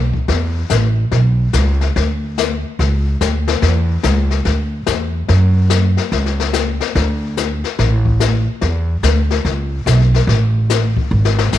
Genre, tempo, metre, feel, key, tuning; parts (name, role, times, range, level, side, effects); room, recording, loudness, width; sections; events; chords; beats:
country, western swing; 144 BPM; 4/4; swing 65% on 8ths; A4 = 440 Hz
upright bass; bass; 0.0-11.6 s; F#1 to F#2; -14 LUFS; right 1 dB
jazz brush drum kit; drums; 0.1-11.6 s; brushed snare drum, hi-hat, kick drum, snare drum; -20 LUFS; left 10 dB
little or no reverb; 1960s-style stereo; -13 LUFS; side -12 dB against mid
0.0-11.6 A section
drum fill 11.1-11.5
| 0.28 0.70 1.12 1.53 | 1.95 2.37 2.79 3.20 | 3.62 4.04 4.45 4.87 | 5.29 5.70 6.12 6.54 | 6.95 7.37 7.78 8.20 | 8.62 9.03 9.45 9.86 | 10.28 10.70 11.11 11.53